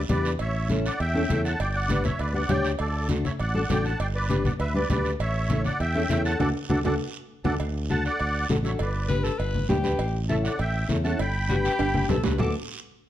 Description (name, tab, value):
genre	latin, cumbia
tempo	200 BPM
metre	4/4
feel	straight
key	D major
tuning	A4 = 440 Hz
part	fingered electric bass	bass	0.0-12.5 s	G1 to E2	-28 LUFS	equal	none
part	musette accordion	melody	0.1-12.5 s	A4 to D6	-30 LUFS	right 1 dB	none
part	nylon-string guitar	accompaniment	0.1-12.5 s	C#4 to C#5	-29 LUFS	left 2 dB	none
part	congas	percussion	0.1-12.5 s	none	-29 LUFS	left 1 dB	none
part	cowbell and timbales	percussion	0.1-12.5 s	none	-34 LUFS	right 6 dB	none
part	guiro	percussion	0.1-12.5 s	none	-41 LUFS	right 6 dB	none
part	clear tenor saxophone	second line	9.1-12.5 s	F#4 to B4	-30 LUFS	left 4 dB	none
room	light reverb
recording	dark, warm production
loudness	-23 LUFS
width	side -12 dB against mid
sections	0.0-7.6 A section; 7.6-12.4 B section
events	band accent 6.4-7.6; drum fill 7.0-7.6, 11.8-12.4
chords	0.4 A7; 1.6 G; 2.8 D; 4.0 G; 5.2 A7; 6.4 D; 8.8 G; 10.0 A7; 11.2 G; 12.4 D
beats	0.10 | 0.40 0.70 1.00 1.30 | 1.60 1.90 2.20 2.50 | 2.80 3.10 3.40 3.70 | 4.00 4.30 4.60 4.90 | 5.20 5.50 5.80 6.10 | 6.40 6.70 7.00 7.30 | 7.60 7.90 8.20 8.50 | 8.80 9.10 9.40 9.70 | 10.00 10.30 10.60 10.90 | 11.20 11.50 11.80 12.10 | 12.39